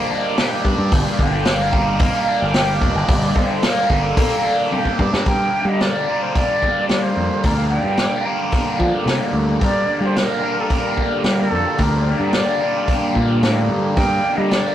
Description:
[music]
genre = psychedelic rock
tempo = 110 BPM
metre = 4/4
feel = straight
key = G minor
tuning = A4 = 440 Hz
[part]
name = soft string machine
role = sustained chords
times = 0.0-14.7 s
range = Bb3 to G5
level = -28 LUFS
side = right 1 dB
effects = ensemble chorus
[part]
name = overdriven electric guitar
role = riff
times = 0.0-14.7 s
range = G2 to Bb4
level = -20 LUFS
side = equal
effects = phaser
[part]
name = vintage drum kit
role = drums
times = 0.4-14.6 s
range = hi-hat, kick drum, snare drum, toms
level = -20 LUFS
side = equal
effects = none
[part]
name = growling fingered electric bass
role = bass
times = 0.6-14.6 s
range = F1 to G3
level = -21 LUFS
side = equal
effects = overdrive
[part]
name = concert flute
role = melody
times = 5.3-14.7 s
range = A4 to G5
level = -22 LUFS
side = right 1 dB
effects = none
[sound]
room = moderate stone room reverb, RT60 1.2 s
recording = rough rehearsal-room recording, tube saturation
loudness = -16 LUFS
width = side -11 dB against mid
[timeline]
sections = 0.0-5.3 A section; 5.3-14.7 B section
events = drum fill 4.7-5.3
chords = 0.0 Gm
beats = 0.39 | 0.93 1.47 2.01 2.55 | 3.09 3.63 4.18 4.72 | 5.26 5.81 6.35 6.90 | 7.44 7.99 8.53 9.08 | 9.62 10.17 10.71 11.25 | 11.80 12.34 12.88 13.43 | 13.97 14.51

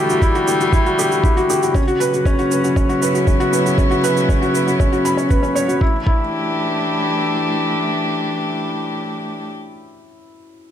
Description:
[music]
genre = piano and strings electronica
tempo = 118 BPM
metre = 4/4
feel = straight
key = E dorian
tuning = A4 = 439 Hz
[part]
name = dark string quartet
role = sustained chords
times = 0.0-9.5 s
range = C#3 to G4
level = -21 LUFS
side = equal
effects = sidechain pumping
[part]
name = felt-muted upright piano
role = riff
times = 0.0-10.7 s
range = C#4 to B5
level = -18 LUFS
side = left 1 dB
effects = tape echo
[part]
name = shaker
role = drums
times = 0.1-5.8 s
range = none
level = -28 LUFS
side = right 7 dB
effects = none
[part]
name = electronic kick drum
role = drums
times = 0.2-6.2 s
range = none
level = -16 LUFS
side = equal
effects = none
[sound]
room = moderate echo chamber reverb, RT60 1.4 s, studio reverb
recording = none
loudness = -15 LUFS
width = side -10 dB against mid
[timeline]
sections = 0.0-5.8 A section; 5.8-9.9 B section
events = none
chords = 0.0 Emadd9; 1.7 Bsus2; 5.8 Em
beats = 0.22 0.73 1.24 | 1.75 2.25 2.76 3.27 | 3.78 4.29 4.80 5.31 | 5.82 6.32 6.83 7.34 | 7.85 8.36 8.87 9.37

